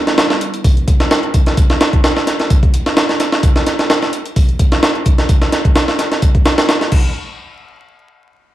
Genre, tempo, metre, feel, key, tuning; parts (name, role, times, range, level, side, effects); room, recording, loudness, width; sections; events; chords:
breakbeat, breaks; 129 BPM; 4/4; swing 54% on 16ths; E minor; A4 = 440 Hz
dark analog pad; sustained chords; 0.0-3.4 s; G3 to B4; -30 LUFS; right 2 dB
breakbeat sampler-style drum kit; drums; 0.1-7.0 s; crash cymbal, hi-hat, kick drum, snare drum; -11 LUFS; equal
electronic hi-hat; drums; 0.1-6.9 s; -33 LUFS; left 3 dB
little or no reverb; vinyl crackle; -11 LUFS; side -14 dB against mid
0.0-7.2 A section; 7.2-8.5 B section
0.0 Em7; 6.9 N.C.